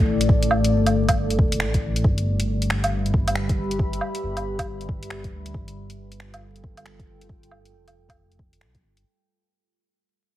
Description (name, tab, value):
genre	future garage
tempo	137 BPM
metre	4/4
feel	swing 63% on 16ths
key	unclear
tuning	A4 = 440 Hz
part	deep dark ambient pad	sustained chords	0.0-9.1 s	G3 to B5	-27 LUFS	left 2 dB	chorus, built-in reverb, sidechain pumping
part	dark detuned saw bass	bass	0.0-9.0 s	E1 to D2	-26 LUFS	equal	sidechain pumping
part	garage drum kit	drums	0.2-9.0 s	finger snaps, hi-hat, woodblock	-26 LUFS	right 1 dB	none
part	electronic kick drum	drums	0.3-8.8 s	none	-22 LUFS	equal	overdrive
room	light reverb, digital ambience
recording	heavily compressed radio sound, vinyl crackle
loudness	-20 LUFS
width	side -14 dB against mid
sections	0.0-9.0 A section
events	fade-out 0.0-9.0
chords	0.0 A7(no3); 2.0 Em/G; 5.5 G7